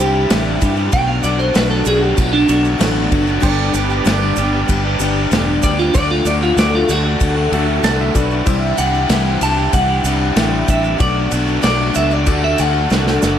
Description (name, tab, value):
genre	folk rock and heartland rock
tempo	95 BPM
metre	4/4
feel	straight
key	D mixolydian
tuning	A4 = 441 Hz
part	clean electric guitar	melody	0.0-13.4 s	D4 to A5	-19 LUFS	right 1 dB	analog chorus
part	picked steel-string acoustic guitar	accompaniment	0.0-13.4 s	G2 to G4	-22 LUFS	left 5 dB	none
part	bright tonewheel organ	sustained chords	0.0-13.4 s	A3 to B4	-30 LUFS	right 1 dB	none
part	overdriven electric guitar	riff	0.0-13.4 s	G2 to G4	-20 LUFS	right 1 dB	none
part	fingered electric bass	bass	0.0-13.4 s	E1 to G2	-20 LUFS	equal	none
part	unplugged drum kit	drums	0.3-13.4 s	crash cymbal, kick drum, ride cymbal, snare drum	-20 LUFS	equal	none
part	tube shaker	percussion	0.3-13.4 s	none	-31 LUFS	right 16 dB	none
part	pedal steel guitar	second line	3.4-8.8 s	G4 to A5	-25 LUFS	right 11 dB	none
part	clear upright piano	accompaniment	3.4-13.4 s	D4 to D5	-31 LUFS	left 10 dB	none
room	light reverb, studio ambience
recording	none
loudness	-13 LUFS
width	side -9 dB against mid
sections	0.0-13.4 A section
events	clean electric guitar solo 0.0-13.4; drum fill 12.9-13.4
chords	0.0 Cadd9; 0.9 Bm7; 3.4 G; 5.9 D; 8.5 Cadd9; 11.0 Bm7; 12.3 D